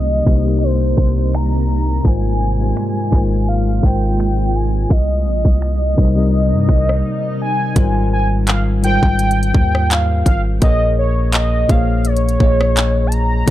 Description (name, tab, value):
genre	contemporary R&B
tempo	84 BPM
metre	4/4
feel	swing 54% on 16ths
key	unclear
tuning	A4 = 439 Hz
part	warm velvety synth lead	melody	0.0-13.5 s	C5 to Bb5	-21 LUFS	right 1 dB	chorus
part	bell-like tine electric piano	accompaniment	0.0-13.5 s	Ab2 to Eb5	-19 LUFS	left 3 dB	phaser
part	granular cloud pad	sustained chords	0.0-7.7 s	C3 to F4	-26 LUFS	right 2 dB	built-in reverb
part	long sustained 808-style bass	bass	0.0-13.5 s	Ab1 to G2	-18 LUFS	equal	none
part	trap drum kit	drums	0.3-13.5 s	finger snaps, handclaps, hi-hat, kick drum, rim click	-15 LUFS	equal	none
room	little or no reverb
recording	dark, warm production, low-pass filter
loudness	-13 LUFS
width	side -14 dB against mid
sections	0.0-7.8 A section; 7.8-13.5 B section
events	filter sweep 0.0-7.8; break 7.0-7.8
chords	0.0 Cm7; 2.0 Ab69; 4.9 Cm7; 7.8 Abmaj13; 10.6 Bbm7